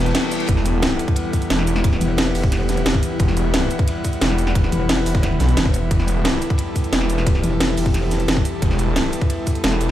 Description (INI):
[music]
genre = dark technical drum and bass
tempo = 177 BPM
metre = 4/4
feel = straight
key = E minor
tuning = A4 = 442 Hz
[part]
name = metallic inharmonic drone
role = sustained chords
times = 0.0-9.9 s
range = E3 to B4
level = -26 LUFS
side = left 2 dB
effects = chorus, built-in reverb, phaser, sidechain pumping
[part]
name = wide detuned saw bass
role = bass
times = 0.0-9.9 s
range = E1 to B1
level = -20 LUFS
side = equal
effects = chorus, tube saturation, sidechain pumping
[part]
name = crunchy breakbeat drum kit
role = drums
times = 0.0-9.9 s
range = hi-hat, ride cymbal, snare drum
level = -35 LUFS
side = equal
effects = none
[part]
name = reverse cymbal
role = sound effects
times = 0.0-0.5 s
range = none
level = -30 LUFS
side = left 6 dB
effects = none
[part]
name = airy breathy pad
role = texture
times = 0.0-9.9 s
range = G3 to A5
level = -26 LUFS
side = equal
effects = chorus, sidechain pumping
[part]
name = drum and bass drum kit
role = drums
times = 0.1-9.9 s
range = cabasa, hi-hat, snare drum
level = -22 LUFS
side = equal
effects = overdrive, studio reverb
[part]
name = electronic kick drum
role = drums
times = 0.5-9.5 s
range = none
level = -19 LUFS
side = equal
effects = overdrive, studio reverb
[part]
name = metallic wobble bass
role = bass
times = 2.0-8.4 s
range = E1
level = -21 LUFS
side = equal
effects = chorus
[sound]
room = small room ambience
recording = played on a big sound system in a bare room, large studio reverb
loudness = -16 LUFS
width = side -12 dB against mid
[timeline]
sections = 0.0-9.9 A section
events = reverse cymbal 0.0-0.5; kick drops out 0.1-0.5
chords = 0.0 Emadd9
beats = 0.15 | 0.49 0.82 1.16 1.50 | 1.84 2.18 2.52 2.86 | 3.20 3.54 3.88 4.21 | 4.55 4.89 5.23 5.57 | 5.91 6.25 6.59 6.93 | 7.27 7.61 7.94 8.28 | 8.62 8.96 9.30 9.64